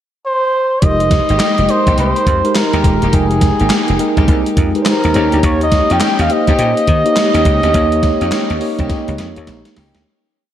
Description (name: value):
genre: R&B, new jack swing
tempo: 104 BPM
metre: 4/4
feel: swing 62% on 16ths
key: F minor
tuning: A4 = 441 Hz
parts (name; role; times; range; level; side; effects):
- trumpet with cup mute; melody; 0.3-9.5 s; Ab4 to G5; -16 LUFS; equal; tape echo
- mellow tine electric piano; accompaniment; 0.8-10.1 s; Ab3 to G5; -18 LUFS; equal; medium stereo tremolo
- dry thumbed slap bass; bass; 0.8-10.0 s; Eb1 to Eb3; -17 LUFS; equal; none
- gated 80s digital drum machine; drums; 0.8-10.0 s; handclaps, hi-hat, kick drum, snare drum; -16 LUFS; equal; gated reverb, gated reverb snare
- warm studio string section; stabs; 1.3-9.9 s; Ab3 to G4; -23 LUFS; right 1 dB; tape echo
room: wet lush hall reverb, RT60 1.9 s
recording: dreamy mix soaked in reverb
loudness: -11 LUFS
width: side -11 dB against mid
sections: 0.0-0.8 pickup bar; 0.8-10.1 verse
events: fade-out 7.7-10.1; drum fill 8.9-10.1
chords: 0.0 N.C.; 0.8 Fm11; 5.1 Eb7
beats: 0.24 | 0.82 1.40 1.98 2.55 | 3.13 3.71 4.28 4.86 | 5.44 6.01 6.59 7.17 | 7.75 8.32 8.90 9.47